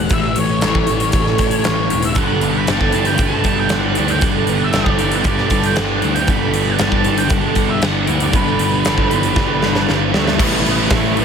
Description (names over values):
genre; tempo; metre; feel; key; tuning
rock, shoegaze and dream pop; 117 BPM; 4/4; straight; unclear; A4 = 440 Hz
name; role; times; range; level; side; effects
octave-fuzz lead guitar; melody; 0.0-11.2 s; A3 to B5; -23 LUFS; equal; distortion, digital delay
picked twelve-string acoustic guitar; arpeggios; 0.0-10.4 s; G4 to C#5; -26 LUFS; right 8 dB; analog chorus, digital delay
fuzz guitar; riff; 0.0-11.2 s; G2 to A3; -21 LUFS; left 11 dB; distortion, lush chorus
picked electric bass; bass; 0.0-11.2 s; E1 to D2; -22 LUFS; equal; none
huge arena drum kit; drums; 0.1-11.2 s; crash cymbal, hi-hat, kick drum, snare drum; -18 LUFS; equal; none
biting overdriven guitar; riff; 2.2-11.2 s; G2 to G4; -20 LUFS; right 12 dB; reverse reverb
room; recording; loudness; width
small room ambience; none; -14 LUFS; side -7 dB against mid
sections
0.0-10.4 A section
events
drum fill 9.4-10.4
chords
0.0 A7; 2.2 G; 10.4 A7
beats
| 0.12 0.63 1.15 1.66 | 2.17 2.69 3.20 3.71 | 4.22 4.74 5.25 5.77 | 6.28 6.79 7.31 7.82 | 8.34 8.85 9.36 9.88 | 10.39 10.90